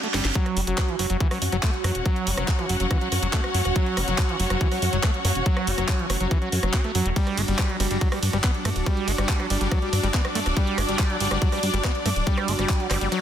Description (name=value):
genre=psychedelic trance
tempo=141 BPM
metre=4/4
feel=straight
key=unclear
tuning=A4 = 440 Hz
part: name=evolving wavetable pad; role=sustained chords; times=0.0-13.2 s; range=F#3 to F#4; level=-32 LUFS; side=right 3 dB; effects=chorus, built-in reverb, phaser, sidechain pumping
part: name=overdriven acid bass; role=riff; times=0.0-13.2 s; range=E3 to C#4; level=-29 LUFS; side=equal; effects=auto-pan, sidechain pumping, dub echo
part: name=garage drum kit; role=drums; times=0.0-13.2 s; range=handclaps, hi-hat, ride cymbal, rim click, snare drum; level=-29 LUFS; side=right 1 dB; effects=overdrive
part: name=rich studio string section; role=texture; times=0.0-13.2 s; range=C#4 to F#5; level=-30 LUFS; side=left 2 dB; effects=sidechain pumping
part: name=plucky analog bass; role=bass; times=0.1-13.1 s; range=D1 to G2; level=-25 LUFS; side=equal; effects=none
part: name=electronic kick drum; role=drums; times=0.4-12.8 s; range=none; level=-23 LUFS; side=equal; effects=overdrive
room=light reverb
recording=dense, heavily limited modern master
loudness=-21 LUFS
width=side -10 dB against mid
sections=0.0-13.2 A section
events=break 0.0-0.4; drum fill 0.0-0.4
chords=0.4 F#5; 7.2 G5